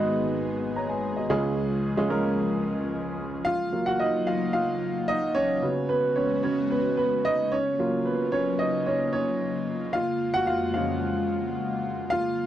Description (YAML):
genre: piano-driven pop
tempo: 111 BPM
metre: 4/4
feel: straight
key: F# major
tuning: A4 = 440 Hz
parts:
  - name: warm upright piano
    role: accompaniment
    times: 0.0-12.5 s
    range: G#1 to A#5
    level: -24 LUFS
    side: right 1 dB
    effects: none
  - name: airy breathy pad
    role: sustained chords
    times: 0.0-12.5 s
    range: E#2 to G#4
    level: -31 LUFS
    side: left 6 dB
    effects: chorus
room: moderate booth ambience, RT60 0.2 s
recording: dry, close 1970s-style studio recording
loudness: -24 LUFS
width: side -11 dB against mid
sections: 0.0-3.5 A section; 3.5-12.5 B section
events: upright piano solo 3.5-12.5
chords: 0.0 G#m; 1.3 C#; 3.5 F#maj7; 5.6 C#7sus4; 7.5 F#maj7; 9.9 A#m7/E#